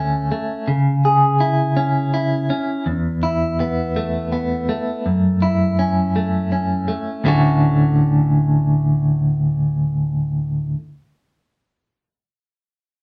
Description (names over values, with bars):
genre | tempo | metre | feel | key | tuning
rock | 55 BPM (dotted quarters) | 6/8 | straight | D lydian | A4 = 441 Hz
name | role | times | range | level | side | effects
clean electric guitar | arpeggios | 0.0-10.8 s | D2 to G#4 | -19 LUFS | equal | tremolo
room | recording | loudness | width
wet studio reverb, RT60 0.6 s | band playing live in one room | -19 LUFS | mono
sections
0.0-7.3 A section; 7.3-11.7 B section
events
none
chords
0.0 Dmaj7; 0.7 C#m; 2.9 Esus4; 5.1 F#m7; 7.3 Dmaj7